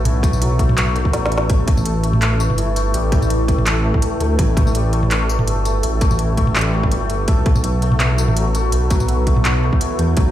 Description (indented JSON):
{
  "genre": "half-time drum and bass",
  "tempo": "166 BPM",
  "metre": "4/4",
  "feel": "swing 54% on 16ths, half-time",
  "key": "unclear",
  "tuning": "A4 = 440 Hz",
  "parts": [
    { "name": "deep dark ambient pad", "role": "sustained chords", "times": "0.0-10.3 s", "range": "A3 to B4", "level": "-26 LUFS", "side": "right 2 dB", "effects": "chorus, built-in reverb, vintage 12-bit sampler grit, sidechain pumping" },
    { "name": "santur", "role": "arpeggios", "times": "0.0-10.3 s", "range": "E3 to A4", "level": "-24 LUFS", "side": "left 5 dB", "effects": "ping-pong delay" },
    { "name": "dark detuned saw bass", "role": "bass", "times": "0.0-10.3 s", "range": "G1 to E2", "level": "-18 LUFS", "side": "equal", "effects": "none" },
    { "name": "organic electronic drum kit", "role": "drums", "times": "0.1-10.2 s", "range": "handclaps, hi-hat, snare drum, tambourine, toms", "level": "-22 LUFS", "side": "right 1 dB", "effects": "none" },
    { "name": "electronic kick drum", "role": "drums", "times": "0.2-10.2 s", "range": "none", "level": "-17 LUFS", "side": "equal", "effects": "overdrive" }
  ],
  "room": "little or no reverb",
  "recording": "played on a big sound system in a bare room, stone room reverb",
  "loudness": "-15 LUFS",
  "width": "side -12 dB against mid",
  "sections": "0.0-10.3 A section",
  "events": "kick drops out 1.1-1.5; drum fill 1.1-1.5",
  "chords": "0.0 B5; 1.5 A5; 7.3 B5"
}